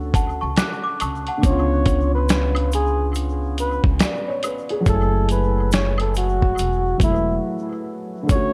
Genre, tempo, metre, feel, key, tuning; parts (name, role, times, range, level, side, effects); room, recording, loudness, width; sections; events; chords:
lo-fi hip hop; 70 BPM; 4/4; swing 62% on 16ths; F# minor; A4 = 440 Hz
felt-muted upright piano; accompaniment; 0.0-8.5 s; D3 to G#5; -28 LUFS; equal; cassette tape, tape echo
upright bass; bass; 0.0-8.5 s; E1 to D2; -24 LUFS; equal
worn celesta; second line; 0.1-1.7 s; F#5 to F#6; -29 LUFS; equal; tape echo
dusty soul sampler-style drum kit; drums; 0.1-8.5 s; hi-hat, kick drum, snare drum; -23 LUFS; equal
egg shaker and woodblock; percussion; 0.2-8.5 s; -38 LUFS; equal; tape echo
mellow flugelhorn; melody; 1.5-8.5 s; E4 to C#5; -27 LUFS; equal; tape echo
light reverb, small room ambience; echo-heavy mix; -20 LUFS; mono
0.0-8.3 A section
break 7.4-8.3
0.0 Dmaj7; 1.4 C#7b9; 4.9 F#m9